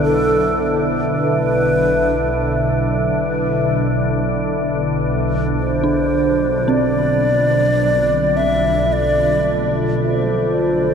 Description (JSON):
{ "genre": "dark ambient drone", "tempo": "54 BPM", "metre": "4/4", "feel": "straight", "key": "unclear", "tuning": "A4 = 440 Hz", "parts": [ { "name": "breathy mellow long shakuhachi", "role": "melody", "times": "0.0-10.9 s", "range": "A4 to E5", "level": "-19 LUFS", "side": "equal", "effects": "diffuse ambient delay" }, { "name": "dark analog pad", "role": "sustained chords", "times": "0.0-10.9 s", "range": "F#3 to E5", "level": "-24 LUFS", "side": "right 1 dB", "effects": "chorus, phaser" }, { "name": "dark detuned synth bell", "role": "arpeggios", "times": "0.0-10.9 s", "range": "C4 to E4", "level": "-25 LUFS", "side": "right 3 dB", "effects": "chorus, diffuse ambient delay" }, { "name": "organ-like drone", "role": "drone", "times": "0.0-10.9 s", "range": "B1 to D3", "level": "-18 LUFS", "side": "equal", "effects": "ensemble chorus, built-in reverb" } ], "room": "wet huge ambient reverb, RT60 7.3 s", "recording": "dark, warm production", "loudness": "-15 LUFS", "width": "side -7 dB against mid", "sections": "0.0-10.9 A section", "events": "none", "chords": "0.0 Bm; 4.5 Dm7/B" }